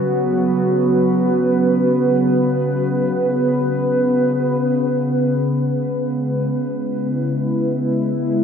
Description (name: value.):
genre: ambient.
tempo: free time.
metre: none.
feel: none.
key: unclear.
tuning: A4 = 443 Hz.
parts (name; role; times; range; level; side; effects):
warbly tape-like pad; solo; 0.0-8.4 s; C#3 to B4; -16 LUFS; equal; chorus, built-in reverb, ping-pong delay.
room: wet scoring stage reverb, RT60 2.2 s.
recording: none.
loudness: -16 LUFS.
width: side -7 dB against mid.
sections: 0.0-4.9 A section; 4.9-8.4 B section.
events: none.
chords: 0.0 F#sus4; 4.9 C#m7.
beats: free time.